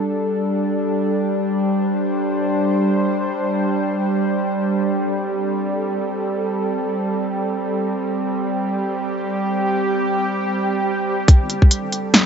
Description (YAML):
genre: deep dubstep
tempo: free time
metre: none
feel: none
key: unclear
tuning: A4 = 439 Hz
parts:
  - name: bowed-like drone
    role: sustained chords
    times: 0.0-12.3 s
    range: G3 to C5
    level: -19 LUFS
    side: right 1 dB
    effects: built-in reverb
  - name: deep soft wobble bass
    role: bass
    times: 11.3-12.3 s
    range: G1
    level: -36 LUFS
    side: left 1 dB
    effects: chorus, high-pass filter
  - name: deep house drum kit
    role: drums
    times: 11.3-12.2 s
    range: hi-hat, snare drum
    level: -14 LUFS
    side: equal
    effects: low-pass filter on hats, low-pass filter on perc, low-pass filter on snare, low-pass filter on room
  - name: electronic kick drum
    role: drums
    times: 11.3-11.7 s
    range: none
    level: -10 LUFS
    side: equal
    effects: none
room: moderate huge ambient reverb, RT60 7.5 s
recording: nothing above 7.7 kHz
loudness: -18 LUFS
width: side -7 dB against mid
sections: 0.0-11.3 A section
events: filter sweep on synth drone 0.0-11.3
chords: 0.0 G5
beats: free time